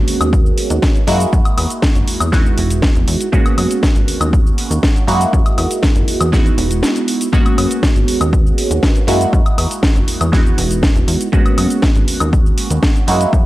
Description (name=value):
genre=filtered disco house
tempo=120 BPM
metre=4/4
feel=straight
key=G# minor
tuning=A4 = 440 Hz
part: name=funky polysynth comp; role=accompaniment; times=0.0-13.5 s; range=G#3 to F#4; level=-18 LUFS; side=right 2 dB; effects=chorus, phaser, cassette tape, sidechain pumping
part: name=plucky analog bass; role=bass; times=0.0-13.4 s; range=E1 to G#2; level=-18 LUFS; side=equal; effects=sidechain pumping
part: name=house drum kit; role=drums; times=0.1-13.4 s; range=hi-hat, shaker, snare drum, woodblock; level=-20 LUFS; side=equal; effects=overdrive, sidechain pumping on hats, sidechain pumping on perc
part: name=electronic kick drum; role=drums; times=0.3-13.4 s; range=none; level=-14 LUFS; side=equal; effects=none
room=digital ambience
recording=dry, gritty hardware recording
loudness=-12 LUFS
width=side -16 dB against mid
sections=0.0-13.5 A section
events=break 6.8-7.3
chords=0.0 G#m11; 1.1 F#13; 2.3 Emaj9; 3.3 G#m11; 5.1 F#13; 6.3 Emaj9; 7.3 G#m11; 9.1 F#13; 10.3 Emaj9; 11.3 G#m11